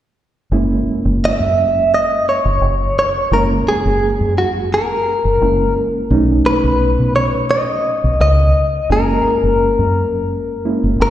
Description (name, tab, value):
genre	blues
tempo	86 BPM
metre	4/4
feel	swing 54% on 16ths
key	unclear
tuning	A4 = 439 Hz
part	barky reed electric piano	accompaniment	0.5-11.1 s	F#3 to E4	-20 LUFS	right 3 dB	fast tremolo, slapback echo
part	deep dub fingered electric bass	bass	0.5-11.1 s	F#1 to B2	-16 LUFS	equal	none
part	direct-recorded clean electric guitar	melody	1.3-11.1 s	F#4 to E5	-16 LUFS	left 1 dB	tremolo, slapback echo
room	moderate lush hall reverb, RT60 2.5 s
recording	live gig heard through the venue's PA, recital hall reverb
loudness	-13 LUFS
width	side -12 dB against mid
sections	0.5-11.1 A section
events	none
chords	0.5 F#7; 6.1 B7; 8.9 F#7